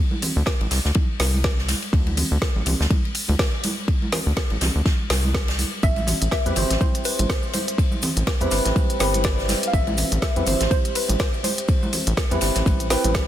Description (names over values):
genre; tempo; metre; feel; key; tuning
deep house; 123 BPM; 4/4; swing 58% on 16ths; A minor; A4 = 441 Hz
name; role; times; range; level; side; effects
congas; percussion; 0.1-13.1 s; none; -30 LUFS; right 2 dB; none
deep house drum kit; drums; 0.2-13.3 s; hi-hat, snare drum; -26 LUFS; equal; studio reverb
natural country drum kit; drums; 0.2-13.3 s; ride cymbal, snare drum; -31 LUFS; left 2 dB; high-pass filter on cymbals, studio reverb, high-pass filter on snare, high-pass filter on room
rubbery square bass; bass; 0.4-13.3 s; G1 to E2; -22 LUFS; equal; sidechain pumping
electronic kick drum; drums; 0.5-13.3 s; none; -22 LUFS; equal; studio reverb
soft round pluck; melody; 5.8-12.1 s; B4 to F5; -29 LUFS; left 1 dB; wide subtle chorus, vintage 12-bit sampler grit, tape echo
cabasa; percussion; 5.8-13.3 s; none; -38 LUFS; right 4 dB; none
percussive organ stab; stabs; 6.5-13.3 s; C4 to C5; -26 LUFS; right 1 dB; lush chorus, dub echo
room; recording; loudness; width
light reverb; dense, heavily limited modern master; -19 LUFS; side -12 dB against mid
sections
0.0-13.3 A section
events
none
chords
0.0 D5; 5.8 Am7